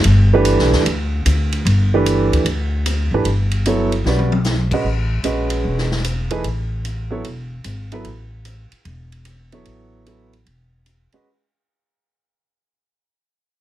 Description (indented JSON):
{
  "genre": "modal jazz",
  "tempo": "150 BPM",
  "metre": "4/4",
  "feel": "swing 66% on 8ths",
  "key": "unclear",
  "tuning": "A4 = 439 Hz",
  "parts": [
    { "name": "upright bass", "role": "bass", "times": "0.0-11.2 s", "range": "E1 to D2", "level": "-18 LUFS", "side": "equal", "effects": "none" },
    { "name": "swinging big-band drum kit", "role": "drums", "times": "0.0-11.2 s", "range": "crash cymbal, hi-hat, kick drum, ride cymbal, snare drum, toms", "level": "-25 LUFS", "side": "equal", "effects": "none" },
    { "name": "clear grand piano", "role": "accompaniment", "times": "0.3-11.3 s", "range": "E3 to Eb5", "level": "-19 LUFS", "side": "right 3 dB", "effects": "none" }
  ],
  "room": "light reverb",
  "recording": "heavily compressed radio sound, multiband compression",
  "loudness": "-16 LUFS",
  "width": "side -13 dB against mid",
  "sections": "0.0-11.3 A section",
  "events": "fade-out 0.0-11.3; drum fill 4.1-4.5",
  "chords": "0.0 Gadd9; 4.9 Amaj9",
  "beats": "| 0.06 0.46 0.86 1.26 | 1.66 2.06 2.46 2.86 | 3.26 3.65 4.05 4.46 | 4.86 5.25 5.66 6.06 | 6.46 6.86 7.26 7.66 | 8.06 8.46 8.86 9.26 | 9.66 10.06 10.46 10.86"
}